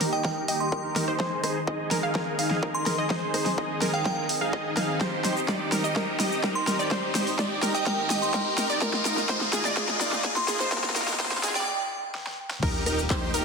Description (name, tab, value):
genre	EDM, festival progressive house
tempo	126 BPM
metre	4/4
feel	straight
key	Eb major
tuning	A4 = 439 Hz
part	lush unison pad	sustained chords	0.0-13.4 s	Eb3 to Eb5	-35 LUFS	left 1 dB	chorus, sidechain pumping
part	wide unison pluck	arpeggios	0.0-13.4 s	Ab4 to F5	-32 LUFS	right 1 dB	sidechain pumping, dub echo
part	dense compressed supersaw	riff	0.0-13.4 s	Eb4 to F5	-30 LUFS	right 1 dB	sidechain pumping, low-pass filter, dub echo
part	big-room dance drum kit	drums	0.0-13.4 s	crash cymbal, handclaps, hi-hat, rim click, shaker, snare drum	-29 LUFS	equal	overdrive
part	riser and impact	sound effects	1.8-13.4 s	none	-34 LUFS	left 1 dB	none
part	glassy synth bell	melody	0.1-11.8 s	G5 to C6	-32 LUFS	right 1 dB	chorus, tremolo, dub echo
part	electronic kick drum	drums	0.2-13.2 s	none	-31 LUFS	equal	overdrive, high-pass filter on kick
part	fat analog bass	bass	12.6-13.4 s	Eb1	-33 LUFS	left 1 dB	sidechain pumping
room	wet lush hall reverb, RT60 2.1 s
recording	dense, heavily limited modern master, high-pass filter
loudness	-24 LUFS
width	side -4 dB against mid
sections	0.0-12.6 A section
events	build-up 0.0-12.6; drum fill 0.0-11.7, 12.2-12.6; filter sweep on supersaw synth 0.0-12.6; filter sweep on synth pluck 0.0-12.6; filter sweep on analog synth pad 0.0-12.6; filter sweep 0.0-12.6; riser 1.8-11.7; break 11.7-12.6; impact 12.6-13.4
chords	0.0 Eb; 1.2 Ab; 5.0 Cm; 8.8 Bbsus4; 12.6 Eb